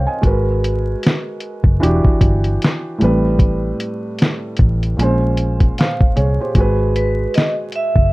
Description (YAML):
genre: lo-fi hip hop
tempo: 76 BPM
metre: 4/4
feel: swing 57% on 16ths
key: unclear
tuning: A4 = 441 Hz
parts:
  - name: felt-muted upright piano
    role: accompaniment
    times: 0.0-8.1 s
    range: A2 to G#5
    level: -20 LUFS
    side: right 1 dB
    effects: cassette tape, low-pass filter
  - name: vintage muted fingered electric bass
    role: bass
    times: 0.0-8.1 s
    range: E1 to B#1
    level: -17 LUFS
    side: equal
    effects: none
  - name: lo-fi sampler-style drum kit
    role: drums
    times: 0.2-8.1 s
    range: hi-hat, kick drum, snare drum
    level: -14 LUFS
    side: equal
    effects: none
  - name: vibraphone with hard mallets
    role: melody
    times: 7.0-8.1 s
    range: B4 to E5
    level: -19 LUFS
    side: right 1 dB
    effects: low-pass filter
room: light reverb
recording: dark, warm production, vinyl crackle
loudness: -14 LUFS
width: side -20 dB against mid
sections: 0.0-8.1 A section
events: none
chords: 0.2 G#m9; 1.8 Em9; 3.0 Am9; 5.0 A#m9; 6.6 G#m7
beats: | 0.24 1.03 1.81 2.60 | 3.39 4.18 4.97 5.76 | 6.55 7.34